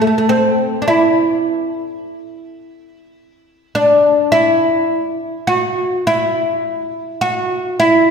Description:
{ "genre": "turkish", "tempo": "104 BPM (eighths)", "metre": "10/8", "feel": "straight", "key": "unclear", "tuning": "A4 = 441 Hz", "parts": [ { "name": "oud", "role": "solo", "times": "0.0-8.1 s", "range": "A3 to F#4-30c", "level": "-13 LUFS", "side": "equal", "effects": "none" } ], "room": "wet concert hall reverb, RT60 2.1 s", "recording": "recorded in a church or concert hall", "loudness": "-13 LUFS", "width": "side -6 dB against mid", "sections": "0.0-8.1 A section", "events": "none", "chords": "none", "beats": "0.29 0.86 1.44 2.02 2.59 3.17 3.75 4.32 | 4.90 5.48 6.05 6.63 7.21 7.78" }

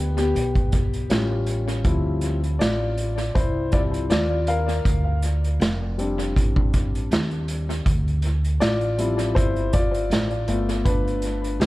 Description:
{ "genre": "hip hop, jazz-hop", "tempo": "80 BPM", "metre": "4/4", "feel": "swing 57% on 16ths", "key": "D minor", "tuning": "A4 = 440 Hz", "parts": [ { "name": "dark upright piano", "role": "accompaniment", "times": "0.0-11.7 s", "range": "F3 to F5", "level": "-26 LUFS", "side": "left 2 dB", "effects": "tape echo" }, { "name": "upright bass", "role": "bass", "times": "0.0-11.7 s", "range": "F1 to Eb2", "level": "-25 LUFS", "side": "equal", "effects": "none" }, { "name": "vintage drum kit", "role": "drums", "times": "0.2-11.7 s", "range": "hi-hat, kick drum, snare drum", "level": "-24 LUFS", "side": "equal", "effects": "tape echo" } ], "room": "little or no reverb", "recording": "echo-heavy mix", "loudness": "-20 LUFS", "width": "side -18 dB against mid", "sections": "0.0-11.7 A section", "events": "upright piano solo 0.0-11.7", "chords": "0.0 G; 1.1 A7b13; 1.9 Dm11; 4.9 Bb6 (rootless); 7.9 Dm11; 10.5 G9", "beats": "0.35 1.10 | 1.85 2.60 3.35 4.11 | 4.86 5.61 6.36 7.11 | 7.86 8.61 9.36 10.11 | 10.86 11.61" }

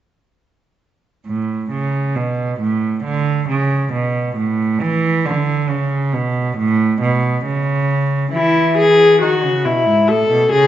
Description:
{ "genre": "classical, baroque-style fugue for string quartet", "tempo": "68 BPM", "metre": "4/4", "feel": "straight", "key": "A major", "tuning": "A4 = 440 Hz", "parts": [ { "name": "rich cello", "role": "bass", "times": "1.3-10.7 s", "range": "G#2 to E3", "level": "-17 LUFS", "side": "right 3 dB", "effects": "none" }, { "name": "rich viola", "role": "accompaniment", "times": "8.3-10.7 s", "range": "E4 to A4", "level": "-12 LUFS", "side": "left 2 dB", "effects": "none" } ], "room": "wet recital hall reverb, RT60 1.4 s", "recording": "nothing above 7.9 kHz", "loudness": "-14 LUFS", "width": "side -11 dB against mid", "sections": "1.3-10.7 A section", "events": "none", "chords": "1.3 A; 3.0 D5; 4.8 E5; 6.6 A; 8.3 E; 10.1 A", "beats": "| 1.27 2.15 3.04 3.93 | 4.81 5.70 6.58 7.45 | 8.33 9.21 10.08" }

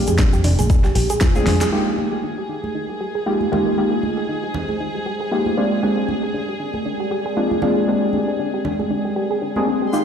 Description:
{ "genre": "deep house", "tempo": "117 BPM", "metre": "4/4", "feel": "swing 57% on 16ths", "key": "unclear", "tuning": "A4 = 440 Hz", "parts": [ { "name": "deep mellow chord stab", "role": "stabs", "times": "0.0-10.0 s", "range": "Ab3 to Ab4", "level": "-21 LUFS", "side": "left 1 dB", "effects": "chorus, sidechain pumping, digital delay" }, { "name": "fingered electric bass", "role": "bass", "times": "0.0-1.6 s", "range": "F1 to F2", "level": "-18 LUFS", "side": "equal", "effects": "sidechain pumping" }, { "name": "soft round pluck", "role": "arpeggios", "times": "0.1-10.0 s", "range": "D4 to Ab4", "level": "-26 LUFS", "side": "right 1 dB", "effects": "chorus, sidechain pumping, digital delay" }, { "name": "deep house drum kit", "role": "drums", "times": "0.1-1.7 s", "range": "hi-hat, snare drum", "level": "-25 LUFS", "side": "equal", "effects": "small room ambience" }, { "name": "tube shaker", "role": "percussion", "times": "0.1-1.7, 9.9-10.0 s", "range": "none", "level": "-35 LUFS", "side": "left 4 dB", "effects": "none" }, { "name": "electronic kick drum", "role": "drums", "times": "0.2-1.3 s", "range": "none", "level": "-16 LUFS", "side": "equal", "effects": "small room ambience" }, { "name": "congas", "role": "percussion", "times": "0.4-9.7 s", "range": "none", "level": "-29 LUFS", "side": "right 6 dB", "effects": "none" }, { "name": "warbly tape-like pad", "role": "sustained chords", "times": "2.8-10.0 s", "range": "Ab3 to G5", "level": "-28 LUFS", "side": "left 2 dB", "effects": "chorus, built-in reverb, sidechain pumping" }, { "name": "warm chamber violin section", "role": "texture", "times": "1.7-10.0 s", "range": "Ab4 to C6", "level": "-30 LUFS", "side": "equal", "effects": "sidechain pumping" } ], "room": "moderate lush hall reverb, RT60 1.8 s", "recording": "played on a big sound system in a bare room, large studio reverb", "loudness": "-18 LUFS", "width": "side -8 dB against mid", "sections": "0.0-1.7 A section; 1.7-10.0 B section", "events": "filter sweep on synth stab 0.0-1.7; drum fill 1.5; band accent 1.6", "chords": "0.0 Bb13 (rootless); 1.7 Fm11; 5.6 Bb13", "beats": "0.19 0.70 1.21 | 1.73 2.24 2.75 3.26 | 3.78 4.29 4.80 5.32 | 5.83 6.34 6.85 7.37 | 7.88 8.39 8.90 9.42 | 9.93" }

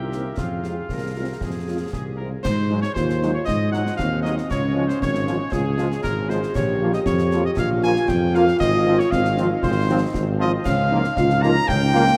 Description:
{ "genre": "military-style march for wind band", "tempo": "117 BPM", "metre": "2/4", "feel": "straight", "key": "F minor", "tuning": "A4 = 440 Hz", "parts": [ { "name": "clear cornet", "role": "melody", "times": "0.0-12.2 s", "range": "F4 to Bb5", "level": "-30 LUFS", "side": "equal", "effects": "none" }, { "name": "clear woodwind section", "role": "second line", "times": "0.0-12.2 s", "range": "G4 to Bb5", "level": "-31 LUFS", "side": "equal", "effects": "none" }, { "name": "mellow euphonium", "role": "second line", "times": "0.0-12.2 s", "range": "Bb3 to Ab4", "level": "-27 LUFS", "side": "equal", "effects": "none" }, { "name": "piccolo", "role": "second line", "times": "0.0-1.9 s", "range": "F5 to G5", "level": "-46 LUFS", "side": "equal", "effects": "none" }, { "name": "mellow tuba", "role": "bass", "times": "0.0-12.1 s", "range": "Ab1 to Ab2", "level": "-26 LUFS", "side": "equal", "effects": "none" }, { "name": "dark French horn section", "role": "accompaniment", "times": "0.1-12.0 s", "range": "F3 to F4", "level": "-30 LUFS", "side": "equal", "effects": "none" }, { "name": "concert snare drum, concert bass drum and clash cymbals", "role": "drums", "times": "0.1-12.2 s", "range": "none", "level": "-33 LUFS", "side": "equal", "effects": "none" }, { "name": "warm trombone section", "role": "sustained chords", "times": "2.7-12.0 s", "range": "F3 to C4", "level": "-34 LUFS", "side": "equal", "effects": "none" } ], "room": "wet cathedral reverb, RT60 6.0 s", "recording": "in a vast, echoing space", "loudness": "-21 LUFS", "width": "mono", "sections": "0.0-2.4 A section; 2.4-12.2 B section", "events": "none", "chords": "0.4 Fm; 2.4 Ab7; 4.5 Db; 6.6 Bb5; 8.6 Fm/Ab; 10.7 Bbm/Db", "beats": "| 0.38 0.90 | 1.41 1.93 | 2.44 2.96 | 3.47 3.98 | 4.50 5.01 | 5.53 6.04 | 6.55 7.07 | 7.58 8.09 | 8.61 9.12 | 9.63 10.14 | 10.66 11.17 | 11.68" }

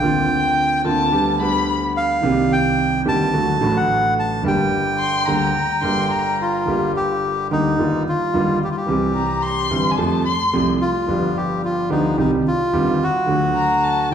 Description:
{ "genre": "tango", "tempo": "109 BPM", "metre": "4/4", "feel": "rubato", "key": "G minor", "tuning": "A4 = 440 Hz", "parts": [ { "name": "bandoneon", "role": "melody", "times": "0.0-14.1 s", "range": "Eb4 to A5", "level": "-20 LUFS", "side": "equal", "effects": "none" }, { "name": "warm concert grand piano", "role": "accompaniment", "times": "0.0-14.1 s", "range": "G1 to G4", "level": "-20 LUFS", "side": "right 1 dB", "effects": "none" }, { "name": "dark violin", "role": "second line", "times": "0.3-14.1 s", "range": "G5 to C6", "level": "-22 LUFS", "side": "left 3 dB", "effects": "none" } ], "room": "wet recital hall reverb, RT60 1.5 s", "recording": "recorded in a church or concert hall", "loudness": "-16 LUFS", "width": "side -8 dB against mid", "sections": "0.0-6.7 A section; 6.7-14.1 A section", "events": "none", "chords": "0.0 Bbadd9/D; 1.1 G/D; 2.2 Cm7; 3.3 D; 4.4 Gm; 7.8 Ebadd9/G; 8.9 C; 10.0 Fadd9; 11.1 G7; 12.2 Cm; 13.3 D", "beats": "| 0.02 0.57 1.12 1.68 | 2.23 2.77 3.33 3.88 | 4.43 4.99 5.55 6.11 | 6.67 7.23 7.78 8.34 | 8.89 9.44 9.99 10.54 | 11.08 11.63 12.18 12.73 | 13.29 13.84" }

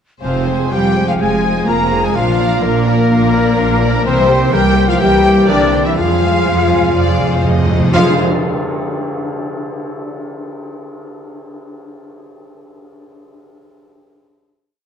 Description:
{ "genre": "cinematic, heroic adventure film score", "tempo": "125 BPM", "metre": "4/4", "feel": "straight", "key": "F dorian", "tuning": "A4 = 440 Hz", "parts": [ { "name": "warm symphonic violin section", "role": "melody", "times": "0.2-8.2 s", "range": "Bb4 to Bb5", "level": "-21 LUFS", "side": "left 4 dB", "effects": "none" }, { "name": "clear oboe", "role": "second line", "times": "0.2-8.1 s", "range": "Bb4 to Bb5", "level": "-24 LUFS", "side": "right 1 dB", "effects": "none" }, { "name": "small flute group", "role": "second line", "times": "0.2-8.2 s", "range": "Bb4 to Bb5", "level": "-22 LUFS", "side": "left 1 dB", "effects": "none" }, { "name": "warm symphonic violin section", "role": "second line", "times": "0.2-8.2 s", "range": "Ab4 to Bb5", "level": "-26 LUFS", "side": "left 2 dB", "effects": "none" }, { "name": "warm symphonic viola section", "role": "accompaniment", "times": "0.2-8.2 s", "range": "E3 to Bb4", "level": "-23 LUFS", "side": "right 1 dB", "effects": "none" }, { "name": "dark trombone section", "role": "sustained chords", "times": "0.2-8.1 s", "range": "E3 to C4", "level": "-25 LUFS", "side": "right 2 dB", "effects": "none" }, { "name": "mellow French horn section", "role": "sustained chords", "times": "0.2-8.1 s", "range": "Bb3 to Bb4", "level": "-20 LUFS", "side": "left 5 dB", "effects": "none" }, { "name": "concert harp", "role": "arpeggios", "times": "0.2-9.9 s", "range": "F2 to C6", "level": "-24 LUFS", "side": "left 7 dB", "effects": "none" }, { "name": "mellow trumpet", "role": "stabs", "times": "0.2-8.1 s", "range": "Bb3 to Bb4", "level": "-22 LUFS", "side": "right 2 dB", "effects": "none" }, { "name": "clear symphonic double bass section", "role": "bass", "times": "0.2-8.2 s", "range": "F1 to F2", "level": "-19 LUFS", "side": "right 3 dB", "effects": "none" }, { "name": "warm symphonic cello section", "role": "bass", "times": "0.2-8.2 s", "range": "Bb2 to Bb3", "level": "-19 LUFS", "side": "right 2 dB", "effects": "none" }, { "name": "cymbal swell and tam-tam", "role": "percussion", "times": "4.1-9.8 s", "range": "none", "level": "-25 LUFS", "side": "left 2 dB", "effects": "none" }, { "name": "timpani", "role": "percussion", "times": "6.0-8.2 s", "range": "F2", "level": "-20 LUFS", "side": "equal", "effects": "none" } ], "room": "wet scoring stage reverb, RT60 1.7 s", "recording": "dark, warm production", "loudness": "-11 LUFS", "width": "side -8 dB against mid", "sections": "0.2-7.9 theme; 7.9-9.9 final chord", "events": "timpani fill 6.0-7.9; band accent 7.9-8.4", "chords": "0.2 Fm; 2.2 Bb; 4.1 C7; 6.0 Fm", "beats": "| 0.24 0.72 1.21 1.69 | 2.16 2.64 3.12 3.59 | 4.06 4.53 5.01 5.49 | 5.97 6.46 6.96 7.45 | 7.94 8.42 8.91 9.39" }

